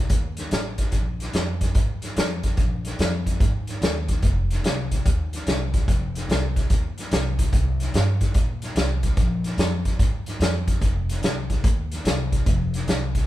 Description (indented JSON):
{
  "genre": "electric blues shuffle",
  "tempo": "146 BPM",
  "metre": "4/4",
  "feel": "swing 66% on 8ths",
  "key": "unclear",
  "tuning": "A4 = 440 Hz",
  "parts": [
    { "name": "upright bass", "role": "bass", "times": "0.0-13.2 s", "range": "F1 to Bb2", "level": "-25 LUFS", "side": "equal", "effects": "none" },
    { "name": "vintage drum kit", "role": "drums", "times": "0.1-13.2 s", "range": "hi-hat, kick drum, snare drum", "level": "-22 LUFS", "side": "equal", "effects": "none" }
  ],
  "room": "light reverb",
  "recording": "band playing live in one room",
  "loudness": "-21 LUFS",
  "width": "side -14 dB against mid",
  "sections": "0.0-13.3 A section",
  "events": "none",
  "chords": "none"
}